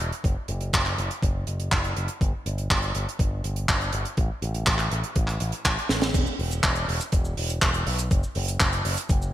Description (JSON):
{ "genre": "italo disco", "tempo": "122 BPM", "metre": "4/4", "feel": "straight", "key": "E minor", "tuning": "A4 = 441 Hz", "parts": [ { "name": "picked electric bass with an envelope filter", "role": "bass", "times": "0.0-9.3 s", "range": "E1 to B1", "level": "-28 LUFS", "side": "equal", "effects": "none" }, { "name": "tight funk drum kit", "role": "drums", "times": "0.1-9.3 s", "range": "cabasa, crash cymbal, handclaps, hi-hat, snare drum", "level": "-26 LUFS", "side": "right 1 dB", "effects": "gated reverb" }, { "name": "electronic kick drum", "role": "drums", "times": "0.2-9.2 s", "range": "none", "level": "-24 LUFS", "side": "equal", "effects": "none" } ], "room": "light reverb", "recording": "bright 1980s-style digital production", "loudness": "-23 LUFS", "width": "side -13 dB against mid", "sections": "0.0-6.1 A section; 6.1-9.3 B section", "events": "drum fill 5.9", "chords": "none" }